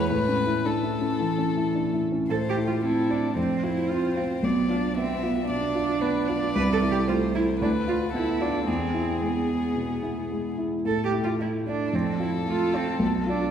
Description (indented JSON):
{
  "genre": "quick classical-period movement for piano trio",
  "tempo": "112 BPM",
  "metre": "4/4",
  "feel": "straight",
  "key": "A minor",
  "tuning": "A4 = 440 Hz",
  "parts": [
    { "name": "warm violin", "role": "melody", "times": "0.0-13.5 s", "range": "G#4 to E5", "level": "-31 LUFS", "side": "left 3 dB", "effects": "none" },
    { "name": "dark cello", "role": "second line", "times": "0.0-13.5 s", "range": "G#3 to B4", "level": "-28 LUFS", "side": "right 4 dB", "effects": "none" },
    { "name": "dark grand piano", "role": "accompaniment", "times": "0.0-13.5 s", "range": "B1 to G#4", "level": "-26 LUFS", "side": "equal", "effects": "none" }
  ],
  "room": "wet scoring stage reverb, RT60 2.1 s",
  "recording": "recorded in a church or concert hall",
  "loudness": "-23 LUFS",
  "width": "side -8 dB against mid",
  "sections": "0.0-2.3 A section; 2.3-13.5 B section",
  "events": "none",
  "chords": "0.1 A; 2.3 Am; 3.4 F5; 4.4 Bdim; 6.5 Am/C; 7.6 Bdim/D; 8.7 E; 10.9 A5; 11.9 F; 13.0 Bdim",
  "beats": "| 0.11 0.65 1.21 1.75 | 2.30 2.84 3.37 3.90 | 4.44 4.97 5.50 6.02 | 6.55 7.08 7.60 8.13 | 8.67 9.21 9.76 10.31 | 10.85 11.40 11.93 12.47 | 13.00"
}